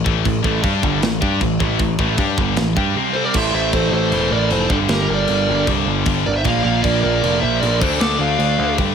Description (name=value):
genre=heavy metal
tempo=155 BPM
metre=4/4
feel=straight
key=A phrygian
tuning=A4 = 440 Hz
part: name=tight distorted guitar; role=riff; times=0.0-8.9 s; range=G2 to G4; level=-22 LUFS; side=left 16 dB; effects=distortion
part: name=overdriven picked electric bass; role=bass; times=0.0-8.9 s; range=E1 to G2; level=-21 LUFS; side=equal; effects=none
part: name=tight metal drum kit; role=drums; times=0.1-8.9 s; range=china cymbal, crash cymbal, kick drum, snare drum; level=-23 LUFS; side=equal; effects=none
part: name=sludgy distorted guitar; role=riff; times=0.3-8.9 s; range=G2 to G4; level=-23 LUFS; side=right 12 dB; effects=overdrive
part: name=dark smooth lead guitar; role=melody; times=3.1-8.7 s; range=A4 to F5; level=-21 LUFS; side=right 1 dB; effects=overdrive
part: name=high-gain lead guitar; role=second line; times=3.2-8.7 s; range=D4 to D5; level=-27 LUFS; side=right 5 dB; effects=distortion
room=small room ambience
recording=none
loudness=-15 LUFS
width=side -7 dB against mid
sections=0.0-3.3 A section; 3.3-8.9 B section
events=half time 3.3-8.9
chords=0.0 A5; 3.0 C5; 3.3 Am; 4.7 Gm; 6.4 Bb; 7.8 Dm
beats=| 0.25 0.64 1.02 1.41 | 1.80 2.19 2.57 2.96 | 3.35 3.73 4.12 4.51 | 4.90 5.28 5.67 6.06 | 6.45 6.84 7.22 7.61 | 8.00 8.39 8.78